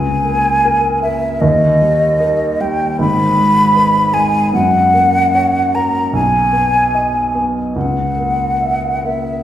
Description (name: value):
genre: classical, romantic duo for flute and grand piano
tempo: 63-80 BPM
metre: 4/4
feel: rubato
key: G# minor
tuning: A4 = 440 Hz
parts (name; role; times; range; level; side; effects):
- mellow hollow concert flute; melody; 0.0-9.4 s; D#5 to B5; -14 LUFS; equal; none
- dark baby grand piano; accompaniment; 0.0-9.4 s; G#1 to E5; -16 LUFS; right 1 dB; none
room: wet recital hall reverb, RT60 1.7 s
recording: heard from further back in the room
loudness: -12 LUFS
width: side -11 dB against mid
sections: 0.0-9.4 A section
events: none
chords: 0.0 C#m6; 1.4 D#; 3.0 G#m; 4.5 F#; 6.1 B; 7.8 A#dim/C#